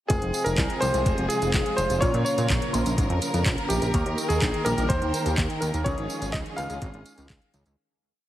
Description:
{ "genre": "italo disco", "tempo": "125 BPM", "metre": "4/4", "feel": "straight", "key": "F minor", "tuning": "A4 = 443 Hz", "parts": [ { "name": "clear electric grand piano", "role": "melody", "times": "0.1-7.5 s", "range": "G4 to F5", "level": "-28 LUFS", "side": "equal", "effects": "tape echo" }, { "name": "warm studio string section", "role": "sustained chords", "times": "0.1-7.8 s", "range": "C3 to G5", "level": "-30 LUFS", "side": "equal", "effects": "none" }, { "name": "electric guitar with an envelope filter", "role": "stabs", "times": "0.1-6.7 s", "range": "Bb2 to C5", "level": "-34 LUFS", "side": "left 1 dB", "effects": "spring reverb, low-pass filter" }, { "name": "chorused synth bass", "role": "bass", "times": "0.1-7.8 s", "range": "F1 to Bb2", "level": "-27 LUFS", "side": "equal", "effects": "tube saturation" }, { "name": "electronic kick drum", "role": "drums", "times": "0.1-7.4 s", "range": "none", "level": "-27 LUFS", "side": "equal", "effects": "none" }, { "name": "house drum kit", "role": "drums", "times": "0.1-7.8 s", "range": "handclaps, hi-hat, tambourine", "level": "-32 LUFS", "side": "right 1 dB", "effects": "overdrive" } ], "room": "light reverb", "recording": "heavily compressed radio sound, multiband compression, lossy compression artefacts", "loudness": "-22 LUFS", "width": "side -13 dB against mid", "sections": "0.1-7.8 verse", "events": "filter sweep on clean electric guitar 0.1-7.8; fade-out 5.2-7.8", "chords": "0.1 Fm; 2.0 Bbm; 3.9 Eb; 5.9 Dbadd9", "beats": "| 0.10 0.58 1.06 1.54 | 2.02 2.50 2.98 3.46 | 3.94 4.42 4.90 5.38 | 5.86 6.34 6.82 7.30" }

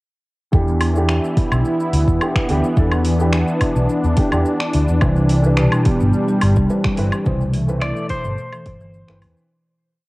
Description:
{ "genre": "organic downtempo", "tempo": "107 BPM", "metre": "4/4", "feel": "straight", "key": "E minor", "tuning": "A4 = 441 Hz", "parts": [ { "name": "felt-muted upright piano", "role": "accompaniment", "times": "0.5-9.5 s", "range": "E3 to C5", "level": "-24 LUFS", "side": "equal", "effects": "sidechain pumping, cassette tape, tape echo" }, { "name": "warm analog pad", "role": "sustained chords", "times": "0.9-9.5 s", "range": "E3 to E4", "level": "-22 LUFS", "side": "equal", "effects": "chorus, sidechain pumping, cassette tape" }, { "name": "fretless electric bass", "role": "bass", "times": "0.5-9.3 s", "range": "G1 to E2", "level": "-18 LUFS", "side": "equal", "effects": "ensemble chorus, sidechain pumping" }, { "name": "deep house drum kit", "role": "drums", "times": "0.5-9.5 s", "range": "cabasa, finger snaps, hi-hat, woodblock", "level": "-26 LUFS", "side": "equal", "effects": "overdrive, small room ambience, cassette tape" }, { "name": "electronic kick drum", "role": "drums", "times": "0.5-8.8 s", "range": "none", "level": "-18 LUFS", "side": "equal", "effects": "overdrive, small room ambience, cassette tape" }, { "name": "marimba with soft mallets", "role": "arpeggios", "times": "5.0-9.2 s", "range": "B2 to E4", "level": "-21 LUFS", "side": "equal", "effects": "cassette tape, tape echo" }, { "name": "clean lap steel guitar", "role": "melody", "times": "7.8-9.2 s", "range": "C5 to D5", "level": "-27 LUFS", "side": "left 1 dB", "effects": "cassette tape" } ], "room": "moderate spring reverb, RT60 2.2 s", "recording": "home recording on cassette", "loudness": "-15 LUFS", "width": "side -21 dB against mid", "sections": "0.5-9.5 groove", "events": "fade-out 6.5-9.5", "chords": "0.5 Em7; 5.0 Cmaj7", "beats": "| 0.53 1.09 1.65 2.21 | 2.77 3.34 3.90 4.46 | 5.02 5.58 6.14 6.70 | 7.26 7.82 8.38 8.94" }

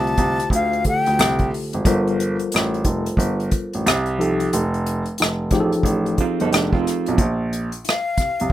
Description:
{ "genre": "R&B, neo-soul", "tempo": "90 BPM", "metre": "4/4", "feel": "swing 63% on 16ths", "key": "G minor", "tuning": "A4 = 437 Hz", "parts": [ { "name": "breathy jazz flute", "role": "melody", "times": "0.0-1.5, 7.9-8.5 s", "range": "F5 to A5", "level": "-21 LUFS", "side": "left 3 dB", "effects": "slapback echo" }, { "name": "tine electric piano", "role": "accompaniment", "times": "0.0-7.2 s", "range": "D3 to C5", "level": "-24 LUFS", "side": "left 2 dB", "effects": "medium stereo tremolo" }, { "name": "warm grand piano", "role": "bass", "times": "0.0-8.5 s", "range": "F1 to D2", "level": "-22 LUFS", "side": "right 1 dB", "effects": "none" }, { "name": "unplugged drum kit", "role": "drums", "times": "0.1-8.5 s", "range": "hi-hat, kick drum, rim click", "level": "-21 LUFS", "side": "equal", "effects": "none" }, { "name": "electric guitar through a small old amp", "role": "second line", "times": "6.2-7.2 s", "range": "C4 to A4", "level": "-22 LUFS", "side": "right 7 dB", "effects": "tremolo" } ], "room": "light reverb", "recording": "rough home demo mix", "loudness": "-18 LUFS", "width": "side -13 dB against mid", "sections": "0.0-8.5 A section", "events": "none", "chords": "0.0 D7sus4; 1.9 Gm11; 3.9 C5; 4.5 F9; 7.2 Bbsus2", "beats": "0.52 1.19 | 1.85 2.52 3.19 3.85 | 4.52 5.19 5.85 6.52 | 7.19 7.85 8.52" }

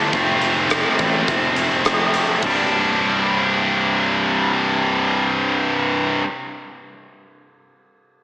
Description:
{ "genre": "quiet-loud alternative rock", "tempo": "104 BPM", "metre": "4/4", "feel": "straight", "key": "unclear", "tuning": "A4 = 440 Hz", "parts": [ { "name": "high-gain distorted guitar", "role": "riff", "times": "0.0-6.2 s", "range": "C2 to F4", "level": "-17 LUFS", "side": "equal", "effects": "distortion, slapback echo" }, { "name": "overdriven picked electric bass", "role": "bass", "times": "0.1-6.2 s", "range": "C1 to A1", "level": "-30 LUFS", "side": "equal", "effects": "none" }, { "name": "huge arena drum kit", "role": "drums", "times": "0.1-2.6 s", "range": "hi-hat, kick drum, ride cymbal, rim click", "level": "-24 LUFS", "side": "equal", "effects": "none" } ], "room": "wet concert hall reverb, RT60 2.6 s", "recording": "big arena sound, small speaker sound", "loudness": "-16 LUFS", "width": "side -20 dB against mid", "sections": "0.0-2.4 A section; 2.4-4.7 B section", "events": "none", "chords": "0.1 F; 2.4 Csus2", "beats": "| 0.13 0.70 1.27 1.85 | 2.42 3.00 3.57 4.15" }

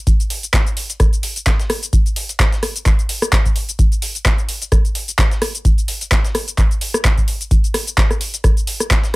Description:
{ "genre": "house", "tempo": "129 BPM", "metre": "4/4", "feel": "swing 56% on 16ths", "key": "none", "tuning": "none", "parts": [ { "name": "booming analog drum machine", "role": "drums", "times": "0.1-9.1 s", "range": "handclaps, hi-hat, rim click, shaker", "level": "-20 LUFS", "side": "equal", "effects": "none" }, { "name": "dusty soul sampler-style drum kit", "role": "drums", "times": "0.1-9.2 s", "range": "hi-hat, snare drum", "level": "-32 LUFS", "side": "left 1 dB", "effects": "none" }, { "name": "electronic kick drum", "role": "drums", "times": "0.1-9.0 s", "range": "none", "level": "-15 LUFS", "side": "equal", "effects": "none" } ], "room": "little or no reverb", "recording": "none", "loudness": "-14 LUFS", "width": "side -23 dB against mid", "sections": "0.0-9.2 A section", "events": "none", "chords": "none", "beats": "| 0.07 0.53 1.00 1.46 | 1.93 2.39 2.86 3.32 | 3.79 4.25 4.72 5.18 | 5.65 6.12 6.58 7.04 | 7.51 7.97 8.44 8.90" }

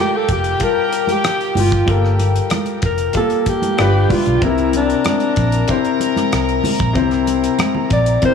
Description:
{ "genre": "lush 1970s-style soul", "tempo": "94 BPM", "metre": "4/4", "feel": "straight", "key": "G dorian", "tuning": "A4 = 440 Hz", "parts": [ { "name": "warm alto saxophone", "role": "melody", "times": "0.0-8.3 s", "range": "Bb3 to D5", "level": "-19 LUFS", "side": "right 1 dB", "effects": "analog delay" }, { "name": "warm studio string section", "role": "second line", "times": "0.0-8.3 s", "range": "D4 to B5", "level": "-25 LUFS", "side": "left 1 dB", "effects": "none" }, { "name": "clear grand piano", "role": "accompaniment", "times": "0.0-8.3 s", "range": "C3 to A5", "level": "-19 LUFS", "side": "left 9 dB", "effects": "none" }, { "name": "vintage muted fingered electric bass", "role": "bass", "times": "0.3-8.2 s", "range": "F1 to C2", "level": "-18 LUFS", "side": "equal", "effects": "none" }, { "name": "damped 70s drum kit", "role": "drums", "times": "0.3-8.3 s", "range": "hi-hat, kick drum, rim click", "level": "-22 LUFS", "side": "equal", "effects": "none" }, { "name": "congas", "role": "percussion", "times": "0.6-8.3 s", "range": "none", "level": "-24 LUFS", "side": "right 7 dB", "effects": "none" } ], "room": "small room ambience", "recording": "studio ambience", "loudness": "-14 LUFS", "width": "side -6 dB against mid", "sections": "0.0-8.3 A section", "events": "alto saxophone solo 0.0-8.3", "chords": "0.0 Gm9; 3.8 G7; 4.4 C7", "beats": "0.61 1.24 | 1.88 2.51 3.15 3.78 | 4.42 5.05 5.69 6.32 | 6.96 7.59 8.22" }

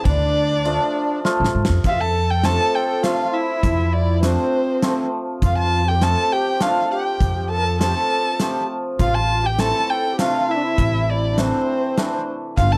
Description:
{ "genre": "klezmer", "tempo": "101 BPM", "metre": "3/4", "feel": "straight", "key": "F major", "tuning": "A4 = 441 Hz", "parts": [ { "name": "dark violin", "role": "melody", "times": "0.0-12.8 s", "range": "C5 to A5", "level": "-25 LUFS", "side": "equal", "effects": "none" }, { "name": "accordion", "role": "second line", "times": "0.0-12.8 s", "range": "C4 to Bb4", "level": "-27 LUFS", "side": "equal", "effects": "light tremolo tuning" }, { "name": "hammered dulcimer", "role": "accompaniment", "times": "0.0-12.6 s", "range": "C3 to F4", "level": "-27 LUFS", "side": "equal", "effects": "none" }, { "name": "upright bass", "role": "bass", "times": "0.1-12.8 s", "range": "G1 to A2", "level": "-23 LUFS", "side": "equal", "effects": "none" }, { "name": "gated 80s drum kit", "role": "drums", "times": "0.1-12.7 s", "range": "hi-hat, kick drum, ride cymbal, snare drum", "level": "-25 LUFS", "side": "equal", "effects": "none" } ], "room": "light reverb", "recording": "none", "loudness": "-20 LUFS", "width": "mono", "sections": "0.0-1.8 A section; 1.8-12.8 B section", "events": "drum fill 1.2-1.8", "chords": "0.0 Dm; 1.8 F; 9.0 Am", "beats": "| 0.05 0.65 1.24 | 1.84 2.44 3.03 | 3.63 4.22 4.82 | 5.42 6.01 6.61 | 7.21 7.80 8.40 | 8.99 9.59 10.19 | 10.78 11.38 11.98 | 12.57" }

